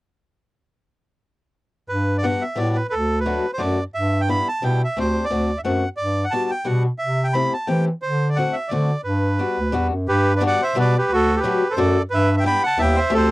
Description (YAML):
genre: musette waltz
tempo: 176 BPM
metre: 3/4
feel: swing 54% on 8ths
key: G major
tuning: A4 = 441 Hz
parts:
  - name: bandoneon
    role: melody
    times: 1.9-13.3 s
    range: F#4 to B5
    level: -22 LUFS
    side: right 1 dB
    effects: none
  - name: warm bass clarinet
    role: bass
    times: 1.9-13.3 s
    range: D2 to E3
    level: -21 LUFS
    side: equal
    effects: none
  - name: picked swing-style acoustic guitar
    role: accompaniment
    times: 2.2-13.3 s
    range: F#3 to G4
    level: -24 LUFS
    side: left 4 dB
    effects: none
room: little or no reverb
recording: dry, close 1970s-style studio recording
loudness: -18 LUFS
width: side -18 dB against mid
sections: 1.9-10.1 A section; 10.1-13.3 A section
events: none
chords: 1.9 Gmaj7; 2.9 D; 3.9 G6; 5.0 D7sus4; 5.3 D7; 6.0 Gmaj7; 7.0 C6; 8.0 D7; 9.1 Gmaj7; 11.1 D; 12.1 G6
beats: | 1.91 2.25 2.59 | 2.93 3.27 3.61 | 3.95 4.29 4.62 | 4.96 5.30 5.65 | 5.99 6.33 6.67 | 7.01 7.35 7.69 | 8.03 8.37 8.71 | 9.05 9.39 9.74 | 10.08 10.42 10.77 | 11.11 11.45 11.78 | 12.12 12.46 12.79 | 13.13